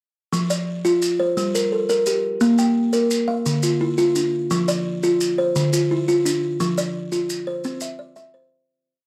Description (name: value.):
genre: southern african traditional, mbira-style interlocking cycle.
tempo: 115 BPM (dotted quarters).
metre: 12/8.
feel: straight.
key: F major.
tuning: A4 = 441 Hz.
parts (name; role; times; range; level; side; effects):
buzzing kalimba; arpeggios; 0.3-8.9 s; D3 to G5; -21 LUFS; equal; none.
maracas; percussion; 0.3-8.3 s; none; -32 LUFS; equal; none.
room: moderate spring reverb, RT60 1.2 s, small room ambience.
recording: dry, gritty hardware recording.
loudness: -21 LUFS.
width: mono.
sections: 0.3-8.7 A section.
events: fade-out 6.6-8.7.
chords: 0.3 F5; 1.4 Gm; 2.4 Bb5; 3.5 Dm; 4.5 F5; 5.6 Dm; 6.6 F5; 7.6 C.